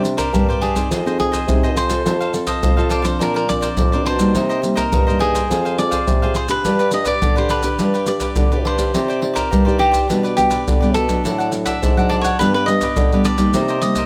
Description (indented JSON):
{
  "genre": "samba and choro",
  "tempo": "104 BPM",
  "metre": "4/4",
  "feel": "straight",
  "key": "C minor",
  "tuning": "A4 = 440 Hz",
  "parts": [
    { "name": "cavaquinho", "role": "melody", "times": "0.0-14.1 s", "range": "G4 to E5", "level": "-24 LUFS", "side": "equal", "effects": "none" },
    { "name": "cavaquinho", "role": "accompaniment", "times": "0.0-14.1 s", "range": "D4 to F#5", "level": "-29 LUFS", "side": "equal", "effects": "none" },
    { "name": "nylon-string guitar", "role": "accompaniment", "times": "0.0-14.1 s", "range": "G2 to D5", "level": "-24 LUFS", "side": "equal", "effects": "none" },
    { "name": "mellow bassoon", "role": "bass", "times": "0.0-14.0 s", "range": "F2 to D3", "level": "-24 LUFS", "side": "equal", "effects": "none" },
    { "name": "maracas, pandeiro and surdo", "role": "percussion", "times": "0.1-14.1 s", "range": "none", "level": "-23 LUFS", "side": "equal", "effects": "none" }
  ],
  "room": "light reverb",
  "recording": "close, detailed microphones",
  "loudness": "-17 LUFS",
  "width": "mono",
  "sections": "0.0-14.1 A section",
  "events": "none",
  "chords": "0.0 Csus2; 0.9 Fm7; 2.1 F; 3.2 Bbadd9; 4.4 Cm7; 5.5 Fm; 6.7 G; 8.9 Cmadd9; 10.1 G/B; 11.2 D/A; 12.4 G; 13.5 Cm7"
}